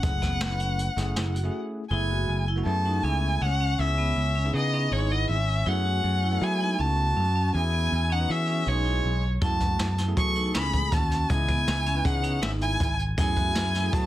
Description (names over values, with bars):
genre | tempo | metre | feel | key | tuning
progressive instrumental, band music in an uneven meter | 160 BPM | 5/4 | straight | F# dorian | A4 = 440 Hz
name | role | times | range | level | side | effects
warm violin | melody | 0.0-14.1 s | C#5 to C#6 | -28 LUFS | equal | none
bell-like tine electric piano | accompaniment | 0.0-14.1 s | G#3 to D#5 | -36 LUFS | left 3 dB | medium stereo tremolo
vibraphone with hard mallets | arpeggios | 0.0-14.0 s | B3 to F#4 | -35 LUFS | right 4 dB | none
picked electric bass | bass | 0.0-14.1 s | F#1 to F#3 | -26 LUFS | equal | none
jazz brush drum kit | drums | 0.0-1.4, 9.4-14.0 s | hi-hat, kick drum, snare drum | -28 LUFS | equal | soft clipping on snare
mellow flugelhorn | second line | 1.9-14.1 s | G#3 to A4 | -38 LUFS | left 4 dB | plate reverb
room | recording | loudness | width
light reverb | dense, heavily limited modern master | -23 LUFS | side -14 dB against mid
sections
0.0-1.9 A section; 1.9-14.1 B section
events
break 1.5-1.9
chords
0.0 F#m7; 1.9 F#m11; 3.8 C#m7; 5.7 F#m11; 7.5 E6; 9.4 F#m11; 11.3 C#m7; 13.2 F#m11